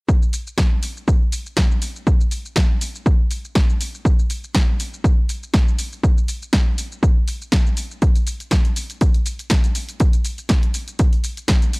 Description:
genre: house.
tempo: 121 BPM.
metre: 4/4.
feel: swing 55% on 16ths.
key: none.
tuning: none.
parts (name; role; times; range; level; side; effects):
electronic kick drum; drums; 0.1-11.6 s; none; -16 LUFS; equal; none.
punchy analog drum machine; drums; 0.1-11.8 s; hi-hat, shaker, snare drum; -25 LUFS; equal; sidechain pumping on perc, sidechain pumping on hats.
room: little or no reverb.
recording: dry, gritty hardware recording.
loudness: -17 LUFS.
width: side -30 dB against mid.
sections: 0.1-11.8 A section.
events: none.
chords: none.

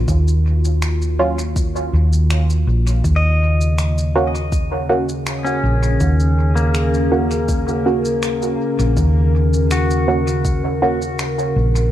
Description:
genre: ambient dub.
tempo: 81 BPM.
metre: 4/4.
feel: straight.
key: unclear.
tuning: A4 = 438 Hz.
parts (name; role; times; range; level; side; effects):
warbly tape-like pad; sustained chords; 0.0-11.9 s; Db3 to Bb4; -23 LUFS; left 1 dB; chorus, built-in reverb.
hollow-body short-scale fingered electric bass; bass; 0.0-11.9 s; Bb1 to Eb2; -17 LUFS; equal; none.
electronic kick drum; drums; 0.1-10.6 s; none; -21 LUFS; equal; overdrive, small room ambience.
electronic shaker and finger snaps; drums; 0.1-11.9 s; none; -30 LUFS; equal; overdrive, small room ambience, dub echo.
filtered dub chord stab; stabs; 1.2-11.0 s; Gb3 to Gb4; -22 LUFS; right 3 dB; chorus, dub echo.
pedal steel guitar; arpeggios; 3.2-11.9 s; Bb3 to Eb5; -24 LUFS; left 2 dB; analog delay.
room: light reverb.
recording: echo-heavy mix.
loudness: -15 LUFS.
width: side -12 dB against mid.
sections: 0.0-11.9 A section.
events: none.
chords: 0.0 Ebmadd9; 3.0 Gb.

